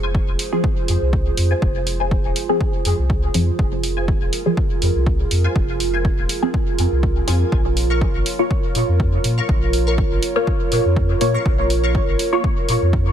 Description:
dub techno; 122 BPM; 4/4; swing 54% on 16ths; F minor; A4 = 440 Hz
dark analog pad; sustained chords; 0.0-13.1 s; F4 to Db5; -24 LUFS; right 3 dB; chorus, sidechain pumping
filtered dub chord stab; riff; 0.0-11.9 s; F4 to Db6; -30 LUFS; left 4 dB; phaser, ensemble chorus, sidechain pumping, dub echo
soft dub sub bass; bass; 0.0-13.1 s; Eb1 to Bb2; -20 LUFS; equal; sidechain pumping
electronic kick drum; drums; 0.1-13.0 s; -21 LUFS; equal; overdrive
electronic hi-hat; drums; 0.4-12.8 s; -27 LUFS; equal; overdrive
filtered dub chord stab; stabs; 0.5-12.5 s; F3 to Db5; -23 LUFS; left 1 dB; phaser, sidechain pumping, dub echo
little or no reverb; echo-heavy mix; -16 LUFS; side -9 dB against mid
0.0-13.1 A section
filter sweep on synth stab 0.0-13.1
0.0 Fm; 7.5 Bbm
0.15 0.64 1.13 | 1.62 2.11 2.60 3.10 | 3.59 4.08 4.57 5.06 | 5.56 6.05 6.54 7.03 | 7.52 8.02 8.51 9.00 | 9.49 9.98 10.47 10.97 | 11.46 11.95 12.44 12.93

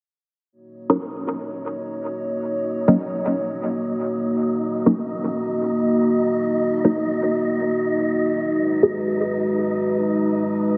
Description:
techno; free time; Eb minor; A4 = 442 Hz
dark analog pad; sustained chords; 1.2-10.8 s; Ab3 to Eb5; -24 LUFS; equal; chorus
wind-like tuned noise texture; texture; 1.4-10.8 s; Eb4 to Eb5; -33 LUFS; equal; built-in reverb
filtered dub chord stab; stabs; 0.9-8.9 s; Gb3 to Ab4; -25 LUFS; equal; phaser, dub echo
moderate lush hall reverb, RT60 3.1 s; -22 LUFS; mono
0.5-10.8 A section
filter sweep on synth stab 0.5-10.8
0.5 Ebm7; 8.5 Abm7
free time

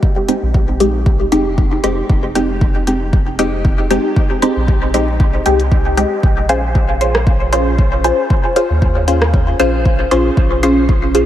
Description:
dub techno; 116 BPM; 4/4; swing 53% on 16ths; F minor; A4 = 439 Hz
filtered dub chord stab; stabs; 0.0-11.3 s; Ab3 to C5; -15 LUFS; equal; phaser, dub echo
electronic kick drum; drums; 0.0-11.0 s; -14 LUFS; equal; overdrive
deep house drum kit; drums; 0.3-11.3 s; hi-hat, rim click; -22 LUFS; right 1 dB; overdrive, dub echo
soft dub sub bass; bass; 0.4-11.3 s; F1 to Eb2; -18 LUFS; equal; sidechain pumping
moderate huge ambient reverb, RT60 4.5 s; dreamy mix soaked in reverb, vinyl crackle; -12 LUFS; side -12 dB against mid
0.0-11.3 A section
0.0 Fm9; 6.2 Bbm9
| 0.03 0.54 1.06 1.58 | 2.10 2.61 3.13 3.65 | 4.16 4.68 5.20 5.72 | 6.23 6.75 7.27 7.79 | 8.30 8.82 9.34 9.85 | 10.37 10.89

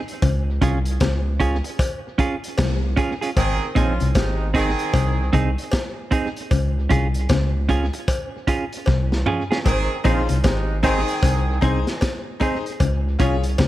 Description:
roots reggae; 76 BPM; 4/4; swing 62% on 16ths; Ab major; A4 = 440 Hz
crunchy breakbeat drum kit; drums; 0.1-13.7 s; hi-hat, kick drum, snare drum, toms; -23 LUFS; equal
mellow electric guitar; riff; 0.2-13.7 s; Ab2 to Db3; -25 LUFS; left 4 dB
soft dub sub bass; bass; 0.2-13.7 s; Ab1 to Db2; -22 LUFS; equal
cowbell; percussion; 0.2-13.7 s; -30 LUFS; left 2 dB
clean electric guitar; accompaniment; 0.6-13.4 s; C4 to Ab4; -25 LUFS; right 4 dB; tape echo
warm horn section; second line; 3.4-11.6 s; C3 to Ab4; -26 LUFS; right 2 dB; tape echo
bright grand piano; stabs; 10.0-13.4 s; Eb4 to Db5; -27 LUFS; left 7 dB
light reverb, small room ambience; -18 LUFS; side -15 dB against mid
0.0-13.7 A section
drum fill 8.9-9.7
0.2 Db; 3.4 Ab; 6.5 Db; 9.7 Ab; 12.8 Db
| 0.23 1.01 1.80 2.58 | 3.37 4.16 4.94 5.73 | 6.51 7.30 8.09 8.87 | 9.66 10.44 11.23 12.02 | 12.80 13.59

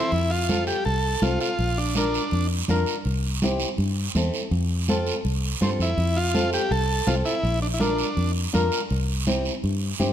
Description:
latin, cumbia; 164 BPM; 4/4; straight; F major; A4 = 440 Hz
overdriven combo organ; melody; 0.0-2.5, 5.6-8.3 s; C4 to A4; -26 LUFS; equal
fingered electric bass; bass; 0.1-10.1 s; Bb1 to G2; -25 LUFS; equal
congas; percussion; 0.1-10.1 s; -30 LUFS; right 2 dB
guiro; percussion; 0.1-10.1 s; -32 LUFS; right 7 dB
flamenco guitar; accompaniment; 0.5-10.1 s; C4 to Bb4; -28 LUFS; left 2 dB
light reverb; -21 LUFS; side -10 dB against mid
0.1-10.1 A section
0.1 F; 1.6 Bb; 3.1 C; 4.5 F; 7.4 Bb; 8.9 C
| 0.12 0.49 0.85 1.22 | 1.59 1.95 2.32 2.69 | 3.05 3.42 3.78 4.15 | 4.52 4.88 5.25 5.61 | 5.98 6.34 6.71 7.08 | 7.44 7.81 8.17 8.54 | 8.90 9.27 9.63 10.00

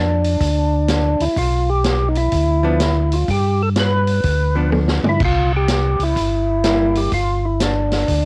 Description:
soul jazz organ trio; 125 BPM; 4/4; swing 66% on 8ths; G mixolydian; A4 = 443 Hz
percussive tonewheel organ; melody; 0.0-8.3 s; D4 to B4; -22 LUFS; equal; slow rotary speaker, overdrive
mellow tonewheel organ; bass; 0.0-8.3 s; G1 to G2; -21 LUFS; equal; slow rotary speaker
vintage drum kit; drums; 0.2-8.2 s; crash cymbal, hi-hat, kick drum, snare drum, toms; -25 LUFS; equal; cassette tape
archtop guitar, miked and amplified; accompaniment; 2.6-7.1 s; F3 to E4; -23 LUFS; equal; cassette tape
little or no reverb; home recording on cassette; -18 LUFS; mono
0.0-8.3 A section
drum fill 4.7-5.2
0.0 G7; 5.2 C7; 7.1 G7(no3)
0.41 0.89 | 1.37 1.85 2.33 2.81 | 3.29 3.77 4.25 4.73 | 5.21 5.69 6.17 6.65 | 7.13 7.61 8.09

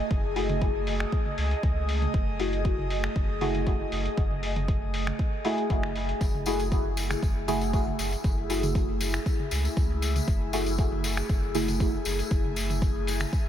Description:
dub techno; 118 BPM; 4/4; straight; F# dorian; A4 = 440 Hz
airy breathy pad; sustained chords; 0.0-13.5 s; A3 to D#5; -33 LUFS; equal; chorus, phaser, sidechain pumping
pure sine sub bass; bass; 0.1-13.3 s; F#1 to C#2; -31 LUFS; equal; tube saturation, sidechain pumping
electronic kick drum; drums; 0.1-13.4 s; -27 LUFS; equal; overdrive
lo-fi sampler-style drum kit; drums; 0.1-13.4 s; finger snaps, hi-hat; -37 LUFS; left 1 dB
deep mellow chord stab; stabs; 0.4-11.9 s; A3 to G#4; -32 LUFS; equal; chorus, phaser, sidechain pumping, dub echo
electronic toms; percussion; 0.5-13.3 s; -39 LUFS; right 2 dB; sidechain pumping on toms, dub echo
tambourine; percussion; 6.2-13.4 s; -38 LUFS; left 4 dB
light reverb, digital ambience; -25 LUFS; side -10 dB against mid
0.0-6.2 A section; 6.2-13.5 A section
filter sweep on synth stab 0.0-6.2, 6.2-13.5
0.0 F#m9
| 0.11 0.62 1.12 1.63 | 2.14 2.65 3.16 3.67 | 4.17 4.68 5.19 5.70 | 6.21 6.72 7.23 7.74 | 8.24 8.75 9.26 9.77 | 10.28 10.79 11.29 11.80 | 12.31 12.82 13.33

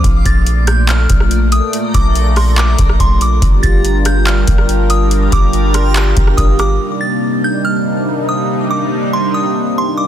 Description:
hip hop, atmospheric cloud-rap; 142 BPM; 4/4; half-time; C dorian; A4 = 439 Hz
delicate synth tine bell; melody; 0.0-10.1 s; C6 to A6; -20 LUFS; equal; chorus, ping-pong delay
sweeping resonant pad; sustained chords; 0.0-10.1 s; Bb2 to Bb4; -17 LUFS; equal; chorus, sidechain pumping
long sustained 808-style bass; bass; 0.0-6.8 s; G1 to Bb1; -13 LUFS; equal
booming analog drum machine; drums; 0.0-6.7 s; handclaps, hi-hat, kick drum, rim click; -14 LUFS; equal
backwards swelling texture; texture; 0.0-6.8 s; A3 to Bb5; -27 LUFS; equal; built-in reverb
digital ambience; dense, heavily limited modern master; -11 LUFS; side -10 dB against mid
0.0-6.8 A section; 6.8-10.1 B section
0.0 Bbmaj7; 3.4 Gm7; 6.8 Cm7
| 0.04 0.46 0.89 1.31 | 1.73 2.15 2.58 3.00 | 3.42 3.84 4.27 4.69 | 5.11 5.54 5.96 6.38 | 6.80 7.22 7.65 8.07 | 8.49 8.91 9.34 9.76

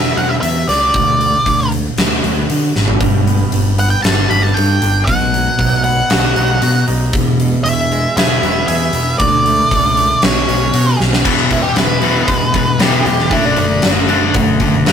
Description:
quiet-loud alternative rock; 116 BPM; 4/4; straight; A4 = 441 Hz
octave-fuzz lead guitar; melody; 0.0-13.8 s; D4 to B5; -16 LUFS; equal; distortion
overdriven picked electric bass; bass; 0.0-14.9 s; E1 to D3; -17 LUFS; equal
huge arena drum kit; drums; 0.2-14.9 s; crash cymbal, hi-hat, kick drum, snare drum, toms; -16 LUFS; equal
twangy electric guitar; arpeggios; 3.0-14.9 s; E2 to A4; -24 LUFS; right 3 dB
scooped high-gain guitar; riff; 11.2-14.9 s; E2 to D4; -17 LUFS; left 4 dB; distortion
overdriven electric guitar; riff; 11.3-14.9 s; E2 to D4; -23 LUFS; right 3 dB; spring reverb
moderate booth ambience, RT60 0.3 s; rough rehearsal-room recording, tube saturation, faint mains hum; -11 LUFS; side -8 dB against mid
0.0-11.3 A section; 11.3-14.9 B section
half time 0.0-11.3; drum fill 2.8, 11.0; lead electric guitar solo 11.3-14.9
0.0 Dmaj7sus2/E; 1.0 N.C.; 3.0 Gadd9; 5.1 B; 7.1 E; 9.2 D5; 10.2 Bsus2; 11.3 E; 13.3 D/F#
0.43 | 0.95 1.47 1.98 2.50 | 3.02 3.53 4.05 4.56 | 5.08 5.59 6.11 6.62 | 7.14 7.66 8.17 8.69 | 9.20 9.72 10.23 10.75 | 11.26 11.78 12.29 12.81 | 13.32 13.84 14.36 14.87

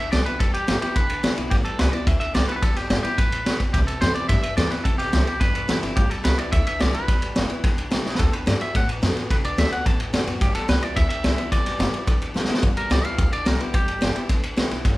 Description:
rockabilly; 216 BPM; 4/4; straight; G major; A4 = 440 Hz
twangy electric guitar; melody; 0.0-14.3 s; G4 to A5; -27 LUFS; equal
picked steel-string acoustic guitar; accompaniment; 0.0-15.0 s; G2 to F#4; -31 LUFS; left 2 dB
upright bass; bass; 0.1-15.0 s; F1 to A2; -26 LUFS; equal
vintage drum kit; drums; 0.1-14.9 s; kick drum, ride cymbal, snare drum; -22 LUFS; equal
moderate large studio reverb, RT60 1.1 s; band playing live in one room; -19 LUFS; side -18 dB against mid
0.0-12.6 A section; 12.6-15.0 B section
drum fill 8.1, 12.4; clean electric guitar solo 12.6-15.0
0.0 G6; 3.7 C6; 6.0 G6; 8.2 D6; 10.4 G6
0.12 | 0.40 0.68 0.96 1.24 | 1.51 1.79 2.07 2.35 | 2.63 2.90 3.18 3.46 | 3.74 4.02 4.30 4.57 | 4.85 5.13 5.41 5.69 | 5.96 6.24 6.52 6.80 | 7.08 7.36 7.63 7.91 | 8.19 8.47 8.74 9.02 | 9.30 9.58 9.86 10.13 | 10.41 10.69 10.96 11.24 | 11.52 11.80 12.07 12.35 | 12.63 12.91 13.18 13.46 | 13.74 14.02 14.29 14.57 | 14.85

